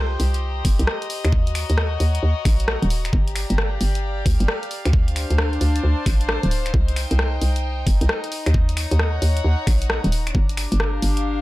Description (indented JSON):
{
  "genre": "UK garage, two-step garage",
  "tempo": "133 BPM",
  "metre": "4/4",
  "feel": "swing 65% on 16ths",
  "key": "C dorian",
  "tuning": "A4 = 440 Hz",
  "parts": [
    { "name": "hollow knocking FM bass", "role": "bass", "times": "0.0-11.4 s", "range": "D1 to Eb2", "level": "-20 LUFS", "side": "equal", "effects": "none" },
    { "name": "warm chamber string section", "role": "texture", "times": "0.0-11.4 s", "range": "D4 to Bb5", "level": "-28 LUFS", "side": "left 3 dB", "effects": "sidechain pumping" },
    { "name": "punchy analog drum machine", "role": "drums", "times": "0.2-11.2 s", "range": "finger snaps, hi-hat, rim click", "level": "-26 LUFS", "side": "equal", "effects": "none" },
    { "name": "electronic kick drum", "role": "drums", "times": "0.6-10.5 s", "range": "none", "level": "-19 LUFS", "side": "equal", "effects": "none" }
  ],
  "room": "little or no reverb",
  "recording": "dark, warm production",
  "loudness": "-18 LUFS",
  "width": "side -18 dB against mid",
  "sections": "0.0-11.4 A section",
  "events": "none",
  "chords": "0.0 Cm7; 1.3 Ebm7; 3.1 Gm7; 4.9 Dm7; 6.7 Cm7; 8.5 Ebm7; 10.3 Gm7"
}